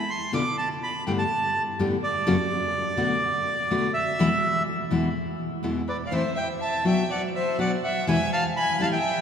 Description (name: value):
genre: tango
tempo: 124 BPM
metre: 4/4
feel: rubato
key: unclear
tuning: A4 = 441 Hz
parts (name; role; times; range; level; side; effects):
- bandoneon; melody; 0.0-9.2 s; D5 to D6; -26 LUFS; right 2 dB; none
- nylon-string guitar; accompaniment; 0.0-9.0 s; E2 to G4; -26 LUFS; left 2 dB; none
- rich violin; second line; 5.9-9.2 s; B4 to G#5; -27 LUFS; left 2 dB; none
room: wet cathedral reverb, RT60 5.2 s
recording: recorded in a church or concert hall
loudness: -22 LUFS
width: side -7 dB against mid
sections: 0.0-9.2 A section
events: none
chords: 0.3 Bm; 1.3 Gadd9; 2.3 F#5; 3.2 Bm7; 4.2 E; 6.1 Am; 7.1 Bm; 8.1 E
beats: | 0.33 0.81 1.29 1.77 | 2.25 2.73 3.22 3.70 | 4.18 4.67 5.15 5.64 | 6.13 6.61 7.10 7.59 | 8.07 8.55 9.04